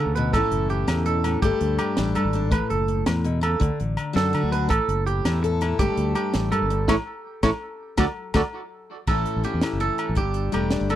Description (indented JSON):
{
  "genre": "highlife guitar band",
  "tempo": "110 BPM (dotted quarters)",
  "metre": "12/8",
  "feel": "straight",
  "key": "A mixolydian",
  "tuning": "A4 = 441 Hz",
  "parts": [
    { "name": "picked steel-string acoustic guitar", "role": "accompaniment", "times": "0.0-11.0 s", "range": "F#2 to A4", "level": "-27 LUFS", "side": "left 6 dB", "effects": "none" },
    { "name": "clean electric guitar", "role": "arpeggios", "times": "0.0-11.0 s", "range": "E4 to D5", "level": "-26 LUFS", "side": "right 7 dB", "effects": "tape echo" },
    { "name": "fingered electric bass", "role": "bass", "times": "0.0-11.0 s", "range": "E1 to D3", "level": "-25 LUFS", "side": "equal", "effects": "none" },
    { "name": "tight funk drum kit", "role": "drums", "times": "0.2-11.0 s", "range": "crash cymbal, hi-hat, kick drum, snare drum", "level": "-26 LUFS", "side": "equal", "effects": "none" },
    { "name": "agogo bells", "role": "percussion", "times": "0.3-11.0 s", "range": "none", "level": "-33 LUFS", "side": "left 4 dB", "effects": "none" }
  ],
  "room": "little or no reverb",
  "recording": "dry, close 1970s-style studio recording",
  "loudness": "-21 LUFS",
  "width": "side -12 dB against mid",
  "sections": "0.0-9.1 A section; 9.1-11.0 B section",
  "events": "band accent 6.9-9.1",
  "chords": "0.3 A; 1.4 Gsus2; 2.5 A; 3.6 D; 4.7 A5; 5.8 Gsus2; 6.9 N.C.; 8.0 D5; 9.1 A; 10.2 Gsus2"
}